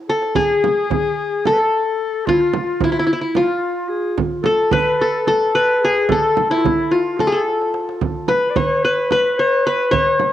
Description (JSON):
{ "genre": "Turkish makam ensemble", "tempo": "220 BPM (eighths)", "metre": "7/8", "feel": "straight", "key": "unclear", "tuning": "A4 = 440 Hz", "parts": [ { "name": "qanun", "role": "melody", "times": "0.1-10.3 s", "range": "E4 to C#5-40c", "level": "-16 LUFS", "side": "left 1 dB", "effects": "cassette tape" }, { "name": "breathy clarinet", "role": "second line", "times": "0.1-10.3 s", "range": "E4 to D5", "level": "-24 LUFS", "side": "left 6 dB", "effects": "cassette tape" }, { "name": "darbuka", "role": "percussion", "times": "0.1-10.3 s", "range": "none", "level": "-29 LUFS", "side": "right 7 dB", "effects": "none" }, { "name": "frame drum", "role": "percussion", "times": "0.4-10.3 s", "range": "none", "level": "-24 LUFS", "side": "right 7 dB", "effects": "none" } ], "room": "light reverb, studio reverb", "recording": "home recording on cassette", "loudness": "-15 LUFS", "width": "side -12 dB against mid", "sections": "0.4-10.3 A section", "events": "drum fill 0.0-0.4, 7.5-8.0", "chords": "none" }